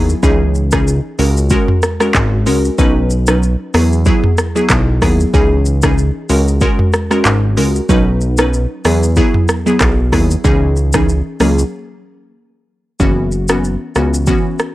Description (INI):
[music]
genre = afrobeats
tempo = 94 BPM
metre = 4/4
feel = swing 55% on 16ths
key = unclear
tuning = A4 = 440 Hz
[part]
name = glassy wavetable pluck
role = accompaniment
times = 0.0-14.5 s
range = E3 to B4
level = -16 LUFS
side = equal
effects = chorus
[part]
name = fat analog bass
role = bass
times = 0.0-14.3 s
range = F#1 to E2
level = -14 LUFS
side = equal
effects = none
[part]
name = afro-pop drum kit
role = drums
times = 0.1-14.7 s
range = handclaps, hi-hat, kick drum, rim click, shaker, toms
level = -15 LUFS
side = equal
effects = none
[sound]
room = digital ambience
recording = dry, gritty hardware recording, cassette tape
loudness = -11 LUFS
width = side -16 dB against mid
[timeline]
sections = 0.0-13.0 A section; 13.0-14.7 B section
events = break 11.7-13.0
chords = 0.2 C#madd9; 1.2 F#add9/C#; 2.8 Badd9; 3.7 Eadd9; 5.3 C#madd9; 6.3 F#add9/C#; 7.9 Badd9; 8.8 Eadd9; 10.4 C#madd9; 11.4 F#add9/C#; 13.0 F#7sus4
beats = | 0.23 0.87 1.51 2.15 | 2.79 3.42 4.06 4.70 | 5.34 5.98 6.62 7.25 | 7.89 8.53 9.17 9.81 | 10.45 11.08 11.72 12.36 | 13.00 13.64 14.28